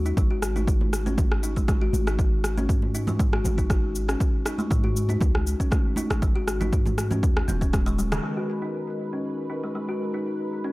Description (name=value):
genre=afro house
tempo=119 BPM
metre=4/4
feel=swing 54% on 16ths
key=G# minor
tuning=A4 = 440 Hz
part: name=warm 808-style bass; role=bass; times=0.0-8.2 s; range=D#1 to G#2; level=-27 LUFS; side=equal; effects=sidechain pumping
part: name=kalimba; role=arpeggios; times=0.1-10.7 s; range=D#3 to F#4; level=-29 LUFS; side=left 1 dB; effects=sidechain pumping, low-pass filter, tape echo
part: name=afro-pop drum kit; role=drums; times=0.1-10.7 s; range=rim click, shaker, toms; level=-32 LUFS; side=equal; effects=low-pass filter on perc, small room reverb, low-pass filter on snare, low-pass filter on toms
part: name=electronic kick drum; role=drums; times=0.2-7.8 s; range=none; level=-23 LUFS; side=equal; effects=overdrive, small room reverb
part: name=congas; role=percussion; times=0.6-7.6 s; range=none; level=-32 LUFS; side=right 2 dB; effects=none
part: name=warm analog pad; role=sustained chords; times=8.2-10.7 s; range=G#3 to B4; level=-33 LUFS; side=equal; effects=chorus, sidechain pumping
room=light reverb, digital ambience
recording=dry, gritty hardware recording, transformer saturation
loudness=-22 LUFS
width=side -20 dB against mid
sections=0.0-8.2 A section; 8.2-10.7 B section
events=drum fill 8.0; band accent 8.1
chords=0.0 G#5; 8.2 G#m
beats=| 0.17 0.68 1.18 1.69 | 2.19 2.69 3.20 3.70 | 4.21 4.71 5.21 5.72 | 6.22 6.73 7.23 7.74 | 8.24 8.74 9.25 9.75 | 10.26